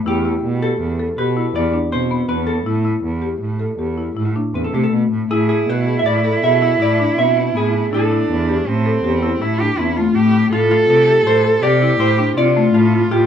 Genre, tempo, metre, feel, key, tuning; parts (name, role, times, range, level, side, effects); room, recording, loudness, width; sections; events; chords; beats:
contemporary instrumental, chamber music in an uneven meter; 161 BPM; 7/4; straight; A4 = 440 Hz
rich cello; bass; 0.0-13.3 s; E2 to C3; -20 LUFS; right 3 dB
vintage hollow-body jazz guitar; melody; 0.1-13.3 s; F4 to E5; -20 LUFS; right 2 dB
marimba with medium hard mallets; arpeggios; 0.1-13.2 s; A3 to A4; -20 LUFS; left 6 dB
warm cello; second line; 5.3-13.3 s; C4 to A4; -18 LUFS; right 2 dB
moderate studio reverb, RT60 0.5 s; dark, warm production; -14 LUFS; side -8 dB against mid
0.0-5.3 A section; 5.3-13.3 B section
0.1 Em; 5.3 E/A; 7.9 Am7; 10.5 Fadd9/A
| 0.06 0.43 0.81 1.18 1.55 1.92 2.29 | 2.67 3.04 3.42 3.79 4.17 4.55 4.93 | 5.31 5.68 6.06 6.44 6.81 7.18 7.55 | 7.93 8.30 8.67 9.04 9.42 9.79 10.15 | 10.52 10.89 11.26 11.63 12.00 12.37 12.74 | 13.11